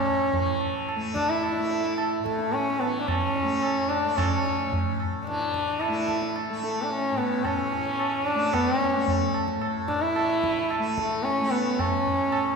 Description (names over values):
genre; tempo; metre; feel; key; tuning
indian classical, Hindustani; 110 BPM; 4/4; straight; A raga khamaj; A4 = 440 Hz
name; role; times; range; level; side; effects
dark sarangi; melody; 0.0-12.6 s; A3 to E4; -25 LUFS; equal; none
tanpura; drone; 0.0-12.6 s; A2 to A3; -32 LUFS; left 3 dB; none
tabla; percussion; 0.1-12.5 s; none; -30 LUFS; right 3 dB; none
room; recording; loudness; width
wet concert hall reverb, RT60 2.4 s; recorded in a church or concert hall; -23 LUFS; side -5 dB against mid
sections
0.0-12.6 A section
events
none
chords
none